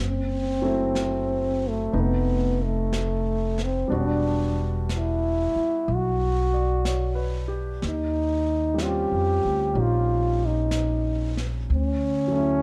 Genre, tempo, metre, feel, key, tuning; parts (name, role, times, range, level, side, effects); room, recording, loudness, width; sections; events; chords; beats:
jazz ballad; 62 BPM; 4/4; swing 66% on 8ths; A4 = 441 Hz
upright bass; bass; 0.0-12.6 s; E1 to F2; -28 LUFS; equal
breathy trombone; melody; 0.1-12.6 s; A3 to G4; -28 LUFS; equal
warm concert grand piano; accompaniment; 0.6-12.6 s; C3 to D5; -33 LUFS; equal
jazz brush drum kit; drums; 1.0-12.6 s; brushed snare drum, hi-hat, snare drum; -41 LUFS; equal
light reverb; dark, warm production; -25 LUFS; mono
0.0-12.6 A section
0.0 F#m7b5; 1.9 F7#11; 3.9 Em9; 7.8 Eb13; 11.7 Dmaj9
0.95 1.93 2.91 | 3.90 4.88 5.86 6.84 | 7.81 8.78 9.75 10.72 | 11.69